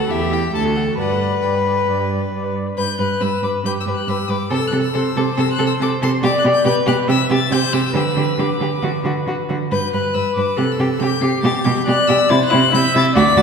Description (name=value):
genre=quick classical-period movement for string quartet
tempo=138 BPM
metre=4/4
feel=straight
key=G major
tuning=A4 = 440 Hz
part: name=rich violin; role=melody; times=0.0-13.4 s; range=E5 to C7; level=-24 LUFS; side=left 7 dB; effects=none
part: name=warm violin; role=second line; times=0.0-13.4 s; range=E4 to B4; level=-22 LUFS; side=left 2 dB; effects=none
part: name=rich viola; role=accompaniment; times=0.0-13.4 s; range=E4 to E5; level=-21 LUFS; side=left 2 dB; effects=none
part: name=rich cello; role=bass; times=0.0-13.4 s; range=D2 to D3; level=-19 LUFS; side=right 3 dB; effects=none
room=wet concert hall reverb, RT60 2.1 s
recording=heard from further back in the room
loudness=-15 LUFS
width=side -6 dB against mid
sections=0.0-2.8 A section; 2.8-13.4 A section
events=none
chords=0.1 Em; 0.5 D; 1.0 G; 4.5 Am/C; 6.2 G/B; 7.1 C6; 7.9 G/D; 9.7 G; 10.6 C5; 11.4 G/B; 12.3 C6